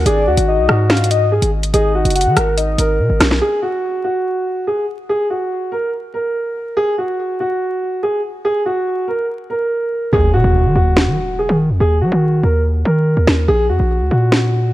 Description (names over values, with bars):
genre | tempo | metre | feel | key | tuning
hip hop, drill | 143 BPM | 4/4 | half-time | Eb harmonic minor | A4 = 440 Hz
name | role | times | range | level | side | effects
dark concert grand piano | melody | 0.0-14.7 s | Gb4 to Bb4 | -18 LUFS | right 1 dB | low-pass filter
soft octave-layered synth lead | second line | 0.0-3.0 s | D5 to Gb5 | -20 LUFS | left 3 dB | chorus, phaser, ping-pong delay
hard-hitting 808-style bass | bass | 0.0-3.4, 10.1-14.7 s | Gb1 to Gb3 | -15 LUFS | equal | none
drill drum kit | drums | 0.1-3.4, 11.0-14.4 s | hi-hat, rim click, snare drum | -17 LUFS | equal | none
impact | sound effects | 10.1-11.8 s | none | -22 LUFS | equal | none
room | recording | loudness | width
digital ambience | vinyl crackle | -14 LUFS | side -15 dB against mid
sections
0.0-3.4 A section; 3.4-10.1 B section; 10.1-14.7 C section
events
hi-hats muted 10.1-14.7; impact 10.1-11.8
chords
0.1 Abm7; 3.4 N.C.; 10.1 Ebm; 13.5 N.C.